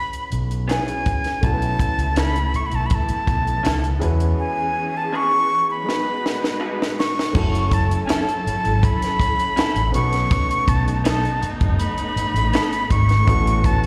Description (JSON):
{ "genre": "lush 1970s-style soul", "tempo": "81 BPM", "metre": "4/4", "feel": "straight", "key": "unclear", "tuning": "A4 = 439 Hz", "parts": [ { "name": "breathy bright concert flute", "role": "melody", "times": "0.0-13.9 s", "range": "G#5 to C#6", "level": "-25 LUFS", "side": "equal", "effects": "slapback echo, analog delay" }, { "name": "warm grand piano", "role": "accompaniment", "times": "0.0-13.9 s", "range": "G#3 to B4", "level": "-33 LUFS", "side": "equal", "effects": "slapback echo" }, { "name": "compact cocktail drum kit", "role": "drums", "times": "0.1-13.9 s", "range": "crash cymbal, hi-hat, kick drum, snare drum", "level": "-24 LUFS", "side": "equal", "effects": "none" }, { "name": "overdriven fingered electric bass", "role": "bass", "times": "0.3-13.8 s", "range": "F#1 to E2", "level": "-23 LUFS", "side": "equal", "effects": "none" }, { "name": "electric guitar through a small old amp", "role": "riff", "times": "0.7-12.7 s", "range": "B3 to B4", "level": "-30 LUFS", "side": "equal", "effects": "slapback echo" }, { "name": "warm studio string section", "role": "sustained chords", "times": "1.4-13.9 s", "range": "E3 to B4", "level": "-32 LUFS", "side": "equal", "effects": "none" } ], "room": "little or no reverb", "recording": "live gig heard through the venue's PA, recital hall reverb", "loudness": "-20 LUFS", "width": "mono", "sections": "0.0-7.3 A section; 7.3-13.9 B section", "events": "drum fill 5.9-7.3", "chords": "0.0 E6; 1.4 B9sus4; 4.0 E6; 5.9 G#m7; 7.3 F#m7; 9.9 B7; 13.3 A6", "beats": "0.69 | 1.43 2.17 2.91 3.65 | 4.39 5.13 5.87 6.61 | 7.35 8.09 8.83 9.57 | 10.31 11.05 11.79 12.53 | 13.27" }